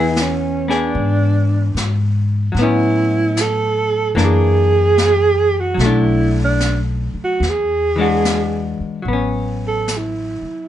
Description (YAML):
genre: jazz ballad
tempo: 74 BPM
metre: 4/4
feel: swing 68% on 8ths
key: A major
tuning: A4 = 435 Hz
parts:
  - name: breathy alto saxophone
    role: melody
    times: 0.0-10.7 s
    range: C#4 to A4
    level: -18 LUFS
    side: right 3 dB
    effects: none
  - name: vintage hollow-body jazz guitar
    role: accompaniment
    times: 0.0-10.7 s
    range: E3 to G#4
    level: -21 LUFS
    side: left 3 dB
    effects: none
  - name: upright bass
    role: bass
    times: 0.0-10.5 s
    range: A1 to A2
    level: -19 LUFS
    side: left 1 dB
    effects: none
  - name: jazz brush drum kit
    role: drums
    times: 0.2-10.7 s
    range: brushed snare drum, hi-hat, snare drum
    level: -27 LUFS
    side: equal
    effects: none
room: light reverb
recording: nothing above 10.9 kHz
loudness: -14 LUFS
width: side -11 dB against mid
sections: 0.0-9.1 A section; 9.1-10.7 B section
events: alto saxophone solo 9.1-10.7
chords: 0.0 E7; 2.6 A69; 4.2 F#7b13; 5.8 Bm7; 7.4 E9; 9.1 A69